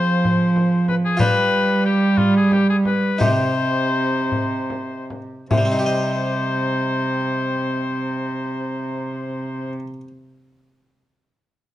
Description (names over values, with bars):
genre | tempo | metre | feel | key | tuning
classical, renaissance-style consort dance | 49-63 BPM (dotted quarters) | 6/8 | straight | C harmonic minor | A4 = 440 Hz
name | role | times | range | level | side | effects
bright oboe | melody | 0.0-9.7 s | F4 to C5 | -24 LUFS | left 4 dB | none
harpsichord | accompaniment | 0.0-10.1 s | C3 to Eb5 | -26 LUFS | equal | none
warm cello | bass | 0.0-9.7 s | C3 to G3 | -21 LUFS | right 2 dB | none
frame drum | percussion | 0.2-5.9 s | none | -23 LUFS | left 2 dB | none
room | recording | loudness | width
moderate stone room reverb, RT60 1.1 s | dark, warm production | -18 LUFS | side -13 dB against mid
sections
0.0-5.5 A section; 5.5-10.4 B section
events
slowing down 0.2-5.5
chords
0.0 Fm; 1.2 G7; 3.2 Cm